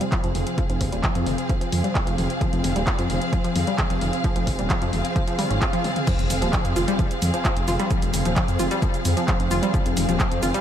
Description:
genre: driving peak-time techno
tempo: 131 BPM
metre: 4/4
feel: straight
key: F minor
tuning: A4 = 439 Hz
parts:
  - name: analog pluck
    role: riff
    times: 0.0-10.6 s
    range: F3 to F4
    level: -28 LUFS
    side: equal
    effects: chorus, overdrive, vintage 12-bit sampler grit, sidechain pumping, ping-pong delay
  - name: deep dark ambient pad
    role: drone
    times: 0.0-10.6 s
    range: F3 to C4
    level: -31 LUFS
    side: left 2 dB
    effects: chorus, built-in reverb, sidechain pumping
  - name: punchy analog drum machine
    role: drums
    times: 0.0-10.6 s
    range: crash cymbal, handclaps, hi-hat, shaker, toms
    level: -29 LUFS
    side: equal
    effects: none
  - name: warm symphonic string section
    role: texture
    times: 0.0-10.6 s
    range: C4 to F5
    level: -28 LUFS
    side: right 1 dB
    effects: sidechain pumping
  - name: electronic kick drum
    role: drums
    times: 0.1-10.3 s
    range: none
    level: -24 LUFS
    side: equal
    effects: none
  - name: dark detuned saw bass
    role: bass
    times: 0.2-10.5 s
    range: Eb1 to F2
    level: -25 LUFS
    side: equal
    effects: sidechain pumping
  - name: swell and impact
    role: sound effects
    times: 5.4-7.9 s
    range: none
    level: -33 LUFS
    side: equal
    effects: none
room: light reverb, digital ambience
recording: none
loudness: -20 LUFS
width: side -10 dB against mid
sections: 0.0-6.1 A section; 6.1-10.6 B section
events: swell 5.4-6.1; drum fill 5.8; drop 6.1-10.6; impact 6.1-7.9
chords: 0.0 Fm

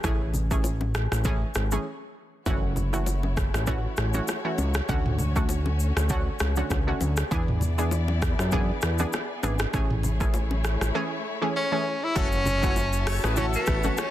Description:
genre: afrobeats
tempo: 99 BPM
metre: 4/4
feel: swing 55% on 16ths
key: F# minor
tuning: A4 = 440 Hz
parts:
  - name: analog pluck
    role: accompaniment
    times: 0.0-14.1 s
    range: D3 to G#4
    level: -31 LUFS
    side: right 2 dB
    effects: chorus
  - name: fat analog bass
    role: bass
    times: 0.0-13.9 s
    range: F#1 to F#2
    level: -26 LUFS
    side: equal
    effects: none
  - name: afro-pop drum kit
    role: drums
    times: 0.0-14.1 s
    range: hi-hat, kick drum, rim click, shaker, toms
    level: -28 LUFS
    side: equal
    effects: soft clipping on snare
  - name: congas and bongos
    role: percussion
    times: 0.0-14.1 s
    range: none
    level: -35 LUFS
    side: left 2 dB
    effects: none
  - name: warm studio string section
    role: sustained chords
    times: 2.5-14.1 s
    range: A3 to A5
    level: -36 LUFS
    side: left 3 dB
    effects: none
  - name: breathy tenor saxophone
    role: melody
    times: 11.6-14.1 s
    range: B3 to E4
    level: -27 LUFS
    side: equal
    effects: ping-pong delay
  - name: clear horn section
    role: second line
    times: 12.2-13.8 s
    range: E4 to C#5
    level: -33 LUFS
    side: left 4 dB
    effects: none
room: little or no reverb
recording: dense, heavily limited modern master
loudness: -23 LUFS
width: side -13 dB against mid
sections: 0.0-2.5 A section; 2.5-12.2 B section; 12.2-14.1 C section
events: break 1.9-2.5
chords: 0.0 Amaj7; 2.5 F#m7; 4.9 Dmaj7; 7.3 E7; 9.7 Amaj7; 12.2 F#m7

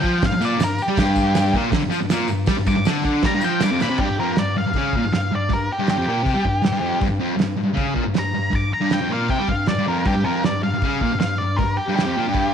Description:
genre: garage rock duo or trio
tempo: 158 BPM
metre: 4/4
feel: straight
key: unclear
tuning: A4 = 440 Hz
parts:
  - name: octave-fuzz lead guitar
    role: melody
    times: 0.0-12.5 s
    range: G4 to D6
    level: -24 LUFS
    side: left 1 dB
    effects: distortion
  - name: thick fuzz guitar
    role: riff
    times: 0.0-12.5 s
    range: F2 to G3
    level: -20 LUFS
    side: left 1 dB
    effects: distortion
  - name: cloth-damped thuddy drum kit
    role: drums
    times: 0.0-12.4 s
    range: crash cymbal, hi-hat, kick drum, snare drum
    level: -24 LUFS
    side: right 2 dB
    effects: none
  - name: tambourine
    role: percussion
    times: 0.0-3.9 s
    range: none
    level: -41 LUFS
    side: left 13 dB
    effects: none
room: moderate echo chamber reverb, RT60 1.4 s, small room ambience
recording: 1960s-style stereo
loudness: -18 LUFS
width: side -8 dB against mid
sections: 0.0-4.0 A section; 4.0-12.5 B section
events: lead electric guitar solo 0.0-4.0; drum fill 3.8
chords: 0.0 G5

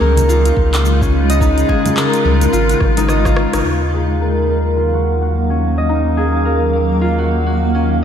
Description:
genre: organic downtempo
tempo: 107 BPM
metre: 4/4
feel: swing 60% on 16ths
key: Eb minor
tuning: A4 = 441 Hz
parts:
  - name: granular cloud pad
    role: sustained chords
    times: 0.0-8.0 s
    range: Db3 to F5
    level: -19 LUFS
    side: equal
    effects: built-in reverb, wide subtle chorus, sidechain pumping
  - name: concert harp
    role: arpeggios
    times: 0.0-8.0 s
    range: Db4 to Eb5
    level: -17 LUFS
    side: left 1 dB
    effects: low-pass filter, analog delay
  - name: warm sub bass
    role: bass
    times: 0.0-8.0 s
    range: Ab1 to Eb2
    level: -16 LUFS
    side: equal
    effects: none
  - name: congas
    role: percussion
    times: 0.0-3.3 s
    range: none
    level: -25 LUFS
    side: right 3 dB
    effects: none
  - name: organic electronic drum kit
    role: drums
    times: 0.2-7.8 s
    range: handclaps, hi-hat, rim click, shaker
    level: -24 LUFS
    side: equal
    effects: low-pass filter on perc, low-pass filter on hats, low-pass filter on snare, low-pass filter on room
  - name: electronic kick drum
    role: drums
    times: 0.6-3.3 s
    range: none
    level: -17 LUFS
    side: equal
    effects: none
room: moderate lush hall reverb, RT60 1.9 s, digital ambience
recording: dreamy mix soaked in reverb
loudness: -12 LUFS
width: side -8 dB against mid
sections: 0.0-3.7 A section; 3.7-8.0 B section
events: drum fill 2.8-3.7; band accent 3.5; filter sweep on harp 3.7-8.0; filter sweep on ambient pad 3.7-8.0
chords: 0.0 Db; 3.7 Ebmadd9

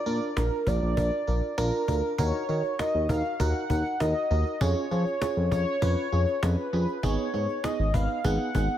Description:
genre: synth-pop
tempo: 99 BPM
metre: 4/4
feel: straight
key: Eb minor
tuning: A4 = 440 Hz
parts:
  - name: warm velvety synth lead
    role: melody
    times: 0.0-8.8 s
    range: Bb4 to Gb5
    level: -30 LUFS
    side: equal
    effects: chorus, analog delay
  - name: FM electric piano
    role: accompaniment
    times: 0.1-8.8 s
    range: Cb4 to Cb5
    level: -31 LUFS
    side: right 2 dB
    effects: chorus, analog delay
  - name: smooth synth bass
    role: bass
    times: 0.1-8.7 s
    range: Ab1 to F3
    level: -26 LUFS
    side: equal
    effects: none
  - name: cajon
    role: drums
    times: 0.1-8.8 s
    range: none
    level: -32 LUFS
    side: equal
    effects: analog delay
room: light reverb, digital ambience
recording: echo-heavy mix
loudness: -24 LUFS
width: side -11 dB against mid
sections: 0.0-2.2 A section; 2.2-8.8 B section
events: none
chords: 0.0 Bb; 2.2 Ebm7; 4.6 Db/F; 7.0 Abm

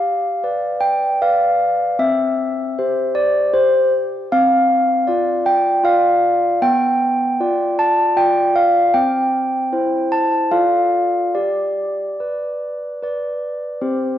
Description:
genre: classical, tune for handbells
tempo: 77 BPM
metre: 3/4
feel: straight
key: unclear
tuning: A4 = 440 Hz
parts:
  - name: handbells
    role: solo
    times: 0.0-14.2 s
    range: B3 to A5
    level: -15 LUFS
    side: equal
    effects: none
room: moderate recital hall reverb, RT60 1.7 s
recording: worn, warbling old tape, cassette tape, warbly pitch drift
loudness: -15 LUFS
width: side -11 dB against mid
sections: 0.0-13.8 A section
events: none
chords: 0.0 G7; 2.0 C; 4.3 Dm7/C; 6.6 G7/B; 8.9 C; 10.5 Dm/F; 11.3 G

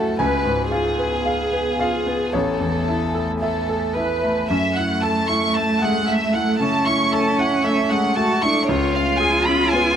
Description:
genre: neoclassical piano and strings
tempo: 57 BPM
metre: 4/4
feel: rubato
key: F# minor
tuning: A4 = 440 Hz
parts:
  - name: warm chamber violin section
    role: melody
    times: 0.0-10.0 s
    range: G#4 to C#6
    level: -22 LUFS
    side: equal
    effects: none
  - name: clear grand piano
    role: accompaniment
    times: 0.0-10.0 s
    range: A1 to G#5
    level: -22 LUFS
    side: left 1 dB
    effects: none
  - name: dark analog pad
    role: sustained chords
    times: 0.0-10.0 s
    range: A3 to G#5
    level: -29 LUFS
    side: equal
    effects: chorus, phaser
  - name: dark cello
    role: second line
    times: 4.5-10.0 s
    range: A3 to F#4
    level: -22 LUFS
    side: right 3 dB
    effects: none
room: little or no reverb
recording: close, detailed microphones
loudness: -17 LUFS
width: side -8 dB against mid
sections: 0.0-4.5 A section; 4.5-10.0 A section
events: none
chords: 0.2 C#7; 2.3 Amaj7; 4.5 F#m7; 8.7 C#7

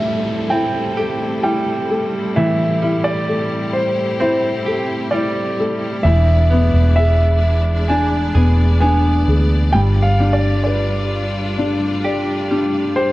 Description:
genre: pop ballad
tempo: 65 BPM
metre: 4/4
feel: straight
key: A minor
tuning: A4 = 440 Hz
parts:
  - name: warm concert grand piano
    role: melody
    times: 0.0-13.1 s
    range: C5 to G#5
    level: -21 LUFS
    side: right 1 dB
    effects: none
  - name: warm upright piano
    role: accompaniment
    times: 0.0-13.1 s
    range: E3 to D5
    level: -21 LUFS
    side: left 2 dB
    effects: none
  - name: bright studio string section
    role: sustained chords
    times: 0.0-13.1 s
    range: G3 to D5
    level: -26 LUFS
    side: left 1 dB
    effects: none
  - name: direct-recorded clean electric guitar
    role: arpeggios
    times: 0.0-13.1 s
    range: E2 to G#4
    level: -24 LUFS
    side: right 2 dB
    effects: none
  - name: downlifter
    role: sound effects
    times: 0.0-6.0 s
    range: none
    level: -32 LUFS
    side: equal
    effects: none
  - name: vintage muted fingered electric bass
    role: bass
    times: 6.0-13.1 s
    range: E1 to D2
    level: -15 LUFS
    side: equal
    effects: none
room: light reverb, studio reverb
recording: worn, warbling old tape, cassette tape, warbly pitch drift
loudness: -14 LUFS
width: side -17 dB against mid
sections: 0.0-13.1 A section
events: none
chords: 0.0 Am7; 6.0 E7; 9.7 G7

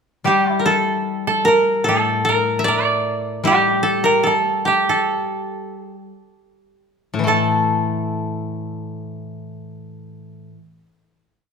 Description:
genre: japanese traditional, Japanese chamber music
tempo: 47-77 BPM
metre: 2/4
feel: rubato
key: A in sen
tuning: A4 = 438 Hz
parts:
  - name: koto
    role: accompaniment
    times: 0.2-10.6 s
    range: A2 to A3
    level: -24 LUFS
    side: left 5 dB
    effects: none
  - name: koto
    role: melody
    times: 0.3-10.5 s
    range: G4 to E5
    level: -19 LUFS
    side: equal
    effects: none
  - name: koto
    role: second line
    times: 0.3-10.5 s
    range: G4 to D5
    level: -20 LUFS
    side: right 4 dB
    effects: none
room: moderate recital hall reverb, RT60 1.5 s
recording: minimal, uncompressed stereo recording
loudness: -16 LUFS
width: side -6 dB against mid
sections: 0.3-7.3 A section; 7.3-11.5 final chord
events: slowing down 3.5-7.3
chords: none

